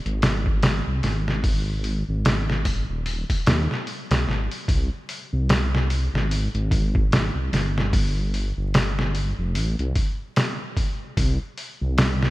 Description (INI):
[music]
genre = trip hop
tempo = 74 BPM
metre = 4/4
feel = swing 59% on 16ths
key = unclear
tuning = A4 = 440 Hz
[part]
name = dark detuned saw bass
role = bass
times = 0.1-12.3 s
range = Eb1 to Eb2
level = -24 LUFS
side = equal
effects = none
[part]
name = trip hop sampler-style drum kit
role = drums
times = 0.1-12.3 s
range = hi-hat, kick drum, snare drum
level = -22 LUFS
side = equal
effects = none
[sound]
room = light reverb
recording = bright 1980s-style digital production, vinyl crackle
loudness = -21 LUFS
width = side -18 dB against mid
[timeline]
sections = 0.0-4.7 A section; 4.7-12.3 B section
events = none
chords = none